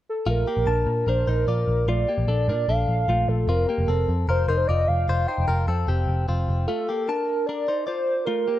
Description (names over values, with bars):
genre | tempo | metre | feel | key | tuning
indie pop | 150 BPM | 4/4 | straight | Bb major | A4 = 439 Hz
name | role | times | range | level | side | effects
warbly nostalgic lead | melody | 0.1-8.6 s | A4 to G5 | -25 LUFS | right 1 dB | chorus
direct-recorded clean electric guitar | arpeggios | 0.3-8.6 s | A3 to A5 | -28 LUFS | left 4 dB | none
vintage muted picked electric bass | bass | 0.3-6.7 s | F1 to Bb2 | -23 LUFS | equal | none
room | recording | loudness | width
little or no reverb | rough home demo mix | -21 LUFS | side -13 dB against mid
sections
0.3-6.7 A section; 6.7-8.6 B section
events
none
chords
0.3 Bbmaj7; 3.5 Fsus2; 6.7 Bbmaj7